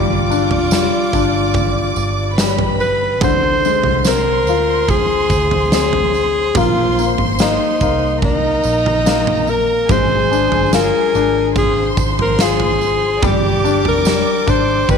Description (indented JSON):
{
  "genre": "pop ballad",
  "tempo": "72 BPM",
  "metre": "4/4",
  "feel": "straight",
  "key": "unclear",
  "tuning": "A4 = 440 Hz",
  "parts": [
    { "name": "breathy alto saxophone", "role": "melody", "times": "0.0-15.0 s", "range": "Eb4 to C5", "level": "-17 LUFS", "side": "equal", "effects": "none" },
    { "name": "warm studio violin section", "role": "second line", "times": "0.0-15.0 s", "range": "G4 to D6", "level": "-22 LUFS", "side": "equal", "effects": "none" },
    { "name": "felt-muted upright piano", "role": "accompaniment", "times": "0.0-15.0 s", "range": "D3 to F4", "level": "-20 LUFS", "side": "left 14 dB", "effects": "none" },
    { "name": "vintage muted fingered electric bass", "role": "bass", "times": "0.0-15.0 s", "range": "F1 to D2", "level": "-22 LUFS", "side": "right 1 dB", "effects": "none" },
    { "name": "tambourine", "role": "percussion", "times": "0.3-15.0 s", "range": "none", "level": "-29 LUFS", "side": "right 20 dB", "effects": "none" },
    { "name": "huge arena drum kit", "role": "drums", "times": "0.5-15.0 s", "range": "kick drum, snare drum, toms", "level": "-20 LUFS", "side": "right 2 dB", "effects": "none" }
  ],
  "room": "light reverb",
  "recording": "1960s-style stereo with parts hard left and right",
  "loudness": "-13 LUFS",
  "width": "side -6 dB against mid",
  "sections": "0.0-15.0 A section",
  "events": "none",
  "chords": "0.0 G7; 3.2 Dm7b5; 6.6 Bbsus4; 9.9 Dm7b5; 13.2 G5"
}